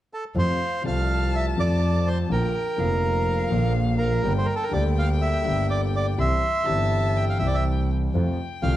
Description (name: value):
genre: tango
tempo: 124 BPM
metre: 4/4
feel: rubato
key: F major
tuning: A4 = 440 Hz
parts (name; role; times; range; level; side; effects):
- bandoneon; melody; 0.1-8.8 s; A4 to F5; -26 LUFS; right 1 dB; none
- warm violin; second line; 0.4-8.8 s; F5 to C6; -34 LUFS; left 4 dB; none
- clear concert grand piano; accompaniment; 0.4-8.8 s; F1 to G4; -27 LUFS; left 3 dB; none
- clear double bass; bass; 0.4-8.8 s; F1 to F2; -24 LUFS; right 1 dB; none
room: moderate large studio reverb, RT60 1.2 s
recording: dark, warm production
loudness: -21 LUFS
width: side -13 dB against mid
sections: 0.4-8.1 A section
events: none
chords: 0.4 F; 2.3 Bb; 4.2 Gm; 6.2 C; 8.1 F